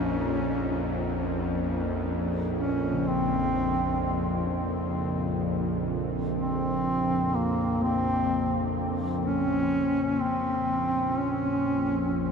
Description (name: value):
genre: dark ambient drone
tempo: free time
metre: none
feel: none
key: Bb minor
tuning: A4 = 441 Hz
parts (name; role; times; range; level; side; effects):
- dark duduk; melody; 0.0-12.3 s; Bb3 to Db4; -28 LUFS; equal; ping-pong delay
- bowed-like drone; drone; 0.0-12.3 s; Bb1 to F2; -28 LUFS; equal; built-in reverb
- quartz singing bowl; arpeggios; 2.9-12.3 s; Db3 to Bb3; -34 LUFS; equal; ping-pong delay
- dark analog pad; sustained chords; 9.3-12.3 s; Bb3 to C5; -47 LUFS; left 1 dB; none
room: wet huge ambient reverb, RT60 7.8 s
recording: none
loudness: -25 LUFS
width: side -6 dB against mid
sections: 0.0-9.3 A section; 9.3-12.3 B section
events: filter sweep on synth drone 9.3-12.3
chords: 0.0 Bbmadd9